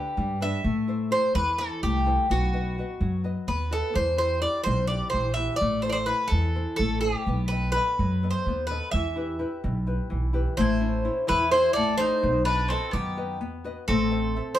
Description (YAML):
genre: greek folk, Greek bouzouki band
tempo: 254 BPM (eighths)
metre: 7/8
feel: straight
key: unclear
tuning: A4 = 440 Hz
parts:
  - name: Greek bouzouki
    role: melody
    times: 0.0-14.6 s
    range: F#4 to E5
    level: -26 LUFS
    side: equal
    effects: none
  - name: nylon-string guitar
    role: accompaniment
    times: 0.0-14.6 s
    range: B2 to E5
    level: -31 LUFS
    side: left 4 dB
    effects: none
  - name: upright bass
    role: bass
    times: 0.0-14.4 s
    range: A1 to A2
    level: -28 LUFS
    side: right 1 dB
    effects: none
  - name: bowl-back mandolin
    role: second line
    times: 10.6-14.6 s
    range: B3 to A4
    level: -32 LUFS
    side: right 1 dB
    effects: none
room: moderate studio reverb, RT60 0.7 s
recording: band playing live in one room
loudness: -23 LUFS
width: side -12 dB against mid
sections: 0.0-10.6 A section; 10.6-14.6 B section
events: none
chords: 0.0 G; 0.6 Am; 2.3 B; 4.0 Emadd9; 5.6 Am; 7.3 B7; 8.9 Em; 10.6 A; 12.2 B; 13.9 Am